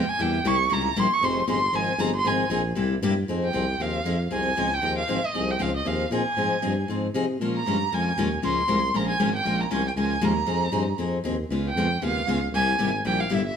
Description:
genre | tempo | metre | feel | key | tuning
acoustic string swing (jazz manouche) | 233 BPM | 4/4 | swing 55% on 8ths | F minor | A4 = 440 Hz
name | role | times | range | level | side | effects
dark violin | melody | 0.0-13.6 s | Eb5 to Db6 | -25 LUFS | right 2 dB | none
picked steel-string acoustic guitar | accompaniment | 0.0-13.4 s | C3 to Bb4 | -26 LUFS | left 3 dB | none
mellow tuba | bass | 0.0-13.6 s | F1 to C3 | -28 LUFS | equal | none
room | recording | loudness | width
moderate studio reverb, RT60 1.0 s | band playing live in one room | -22 LUFS | side -7 dB against mid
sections
0.0-3.3 A section; 3.3-13.6 B section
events
violin solo 0.0-3.3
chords
0.2 C7b9; 1.2 Fm7; 2.8 C7; 3.3 Fm7; 11.5 Db7; 12.5 C7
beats
| 0.19 0.45 0.71 0.97 | 1.22 1.48 1.74 1.99 | 2.25 2.51 2.77 3.02 | 3.28 3.54 3.79 4.05 | 4.31 4.57 4.82 5.08 | 5.34 5.59 5.85 6.11 | 6.37 6.62 6.88 7.14 | 7.39 7.65 7.91 8.16 | 8.42 8.68 8.94 9.19 | 9.45 9.71 9.96 10.22 | 10.48 10.73 10.99 11.25 | 11.51 11.76 12.02 12.28 | 12.53 12.79 13.05 13.30 | 13.56

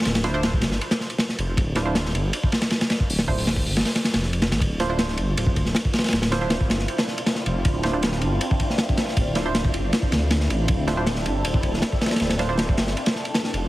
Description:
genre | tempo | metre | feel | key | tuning
drum and bass, jungle | 158 BPM | 4/4 | straight | D minor | A4 = 439 Hz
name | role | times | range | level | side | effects
crunchy breakbeat drum kit | drums | 0.0-13.6 s | hi-hat, kick drum, ride cymbal, snare drum | -22 LUFS | equal | none
dark detuned saw bass | bass | 0.1-13.7 s | D1 to D2 | -25 LUFS | equal | none
filtered dub chord stab | stabs | 0.2-12.6 s | D4 to C5 | -30 LUFS | right 2 dB | chorus, dub echo
soft string machine | sustained chords | 4.6-13.7 s | C4 to A4 | -30 LUFS | equal | phaser, ensemble chorus
room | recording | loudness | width
light reverb, small room ambience | heavily compressed radio sound, vinyl crackle | -20 LUFS | side -17 dB against mid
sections
0.0-13.7 A section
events
none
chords
0.0 Dm9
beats
| 0.05 0.43 0.81 1.19 | 1.57 1.95 2.33 2.71 | 3.09 3.47 3.85 4.23 | 4.61 4.99 5.37 5.75 | 6.13 6.51 6.89 7.27 | 7.65 8.03 8.41 8.79 | 9.17 9.55 9.93 10.31 | 10.69 11.07 11.45 11.83 | 12.21 12.59 12.96 13.35

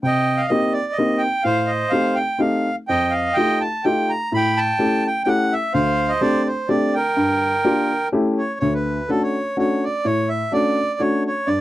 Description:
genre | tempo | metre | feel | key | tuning
musette | 126 BPM | 3/4 | swing 54% on 8ths | D major from 8.6 s | A4 = 440 Hz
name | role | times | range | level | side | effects
accordion | melody | 0.0-11.6 s | A4 to B5 | -20 LUFS | right 2 dB | none
dark upright piano | accompaniment | 0.0-11.6 s | D2 to G4 | -20 LUFS | left 1 dB | none
room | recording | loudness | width
light reverb | dry, close 1970s-style studio recording | -17 LUFS | side -15 dB against mid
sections
0.0-8.6 A section; 8.6-11.6 B section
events
none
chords
0.0 Cm7; 1.5 Am7b5; 2.9 F9; 4.3 A7; 5.7 D7sus4; 7.2 Gm7; 8.1 A7; 8.6 Dmaj7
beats
| 0.04 0.51 0.98 | 1.46 1.93 2.42 | 2.91 3.38 3.86 | 4.33 4.81 5.28 | 5.75 6.22 6.69 | 7.16 7.63 8.12 | 8.61 9.09 9.57 | 10.05 10.53 11.00 | 11.48

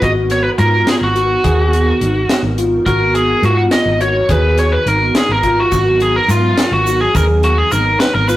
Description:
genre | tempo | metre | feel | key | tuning
progressive instrumental, band music in an uneven meter | 210 BPM (eighths) | 5/8 | straight | G# dorian | A4 = 441 Hz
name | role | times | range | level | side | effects
biting lead guitar | melody | 0.0-8.4 s | E#4 to F#5 | -15 LUFS | equal | overdrive
hollow soft pad | accompaniment | 0.0-8.4 s | F#3 to A#4 | -23 LUFS | right 2 dB | ensemble chorus
bright tine electric piano | arpeggios | 0.0-8.4 s | D#4 to G#4 | -19 LUFS | left 1 dB | medium stereo tremolo
hollow-body short-scale fingered electric bass | bass | 0.0-8.4 s | G#1 to G#2 | -17 LUFS | equal | none
deep reggae drum kit | drums | 0.0-8.4 s | hi-hat, kick drum, snare drum | -19 LUFS | equal | none
egg shaker | percussion | 5.7-8.4 s | none | -32 LUFS | right 4 dB | none
room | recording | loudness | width
wet stone room reverb, RT60 1.0 s | rough rehearsal-room recording, warm saturation | -11 LUFS | side -15 dB against mid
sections
0.0-8.4 A section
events
lead electric guitar solo 0.0-8.4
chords
0.0 G#m9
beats
| 0.02 0.31 0.59 0.88 1.16 | 1.45 1.73 2.02 2.31 2.59 | 2.88 3.16 3.45 3.73 4.02 | 4.30 4.59 4.87 5.16 5.44 | 5.73 6.01 6.30 6.59 6.87 | 7.16 7.44 7.73 8.01 8.30

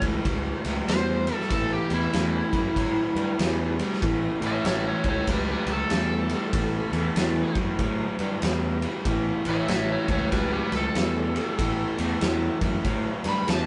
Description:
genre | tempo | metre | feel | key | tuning
blues rock power trio and southern rock | 95 BPM | 4/4 | swing 63% on 8ths | A mixolydian | A4 = 440 Hz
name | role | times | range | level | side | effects
overdriven slide guitar | melody | 0.0-13.7 s | E4 to B5 | -32 LUFS | equal | none
raw garage guitar | riff | 0.0-13.7 s | A2 to G3 | -31 LUFS | equal | overdrive
fuzz picked electric bass | bass | 0.0-13.7 s | A1 to A2 | -31 LUFS | equal | overdrive
oversized low-tuned drum kit | drums | 0.0-13.7 s | kick drum, ride cymbal, snare drum | -31 LUFS | equal | none
room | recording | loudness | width
moderate studio reverb, RT60 0.5 s | band playing live in one room, nothing above 10.4 kHz | -25 LUFS | mono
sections
0.0-13.7 A section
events
electric slide guitar solo 0.0-13.7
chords
0.0 A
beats
0.25 0.88 | 1.51 2.13 2.76 3.39 | 4.02 4.65 5.28 5.91 | 6.54 7.17 7.80 8.43 | 9.06 9.69 10.32 10.95 | 11.58 12.21 12.85 13.48

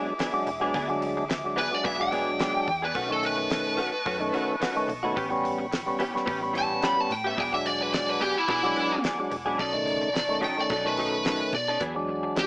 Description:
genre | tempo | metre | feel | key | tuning
straight-eighth soul blues | 108 BPM | 4/4 | swing 56% on 16ths | E mixolydian | A4 = 437 Hz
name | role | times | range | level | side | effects
percussive tonewheel organ | accompaniment | 0.0-12.5 s | C#3 to D4 | -32 LUFS | equal | slow rotary speaker
warm chamber string section | sustained chords | 0.0-11.8 s | D#4 to D6 | -38 LUFS | equal | none
direct-recorded clean electric guitar | stabs | 0.0-12.4 s | D#3 to A4 | -35 LUFS | equal | ensemble chorus
damped 70s drum kit | drums | 0.2-12.5 s | hi-hat, kick drum, snare drum | -37 LUFS | equal | none
vintage muted fingered electric bass | bass | 0.5-12.5 s | E1 to B2 | -46 LUFS | equal | none
biting lead guitar | melody | 1.6-12.5 s | E4 to B5 | -30 LUFS | equal | overdrive
room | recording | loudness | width
light reverb, small room ambience | small speaker sound | -27 LUFS | mono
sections
0.0-11.8 A section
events
lead electric guitar solo 0.0-11.8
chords
0.0 E9; 3.0 B9; 5.2 A9; 7.4 E9; 9.6 B9; 11.8 E9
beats
0.19 | 0.74 1.30 1.85 2.40 | 2.96 3.51 4.06 4.62 | 5.17 5.72 6.28 6.83 | 7.38 7.93 8.49 9.04 | 9.59 10.15 10.70 11.25 | 11.81 12.36

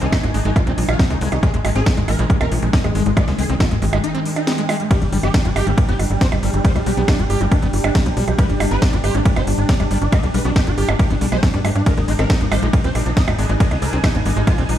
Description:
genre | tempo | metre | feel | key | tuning
psychedelic trance | 138 BPM | 4/4 | straight | unclear | A4 = 445 Hz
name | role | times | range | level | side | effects
swarming rave lead | melody | 0.0-14.7 s | G3 to Eb5 | -26 LUFS | equal | chorus, phaser, sidechain pumping, dub echo
pulsing gated texture | sustained chords | 0.0-14.8 s | G3 to D4 | -28 LUFS | left 3 dB | chorus, built-in reverb, sidechain pumping
overdriven acid bass | riff | 0.0-14.6 s | F3 to G4 | -27 LUFS | moving between left 6 dB and right 6 dB | distortion, auto-pan, sidechain pumping, tape echo
tight sequencer bass | bass | 0.0-14.8 s | G1 to G2 | -19 LUFS | equal | none
techno drum kit | drums | 0.0-14.8 s | hi-hat, percussion blips, ride cymbal, snare drum | -25 LUFS | right 2 dB | none
deep dark ambient pad | texture | 0.0-14.8 s | Eb3 to Ab5 | -28 LUFS | right 1 dB | chorus, built-in reverb, sidechain pumping
electronic kick drum | drums | 0.1-14.6 s | none | -16 LUFS | equal | none
room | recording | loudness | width
light reverb | played on a big sound system in a bare room, stone room reverb | -15 LUFS | side -11 dB against mid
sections
0.0-14.8 A section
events
break 4.0-4.9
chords
0.0 Ab5; 4.9 G5; 11.9 Ab5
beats
0.12 0.56 0.99 | 1.43 1.86 2.30 2.73 | 3.17 3.60 4.04 4.47 | 4.91 5.34 5.78 6.21 | 6.65 7.08 7.52 7.95 | 8.38 8.82 9.26 9.69 | 10.12 10.56 10.99 11.43 | 11.86 12.30 12.73 13.17 | 13.60 14.04 14.47

